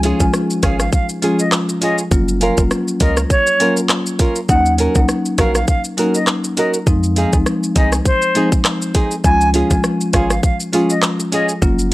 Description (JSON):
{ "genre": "dancehall", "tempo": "101 BPM", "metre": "4/4", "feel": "swing 56% on 16ths", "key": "Db major", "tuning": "A4 = 440 Hz", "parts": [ { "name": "marimba with medium mallets", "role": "accompaniment", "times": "0.0-11.9 s", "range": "F3 to F4", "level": "-19 LUFS", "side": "left 1 dB", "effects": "none" }, { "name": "nylon-string guitar", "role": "arpeggios", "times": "0.0-11.9 s", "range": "C4 to Bb4", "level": "-20 LUFS", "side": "right 2 dB", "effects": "none" }, { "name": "warm 808-style bass", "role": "bass", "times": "0.0-11.9 s", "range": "F1 to F2", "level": "-19 LUFS", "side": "equal", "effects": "none" }, { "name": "island pop drum kit", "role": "drums", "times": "0.0-11.9 s", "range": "handclaps, hi-hat, kick drum, rim click, shaker", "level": "-17 LUFS", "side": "equal", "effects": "none" }, { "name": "silver concert flute", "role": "melody", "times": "0.2-11.9 s", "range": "C5 to Ab5", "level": "-20 LUFS", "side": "equal", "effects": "none" } ], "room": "studio reverb", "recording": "dry, gritty hardware recording, transformer saturation", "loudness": "-13 LUFS", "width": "side -18 dB against mid", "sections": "0.0-11.9 A section", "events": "none", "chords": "0.0 Db; 2.1 Gbmaj7; 4.5 Ebm7; 6.9 Fm7; 9.2 Db" }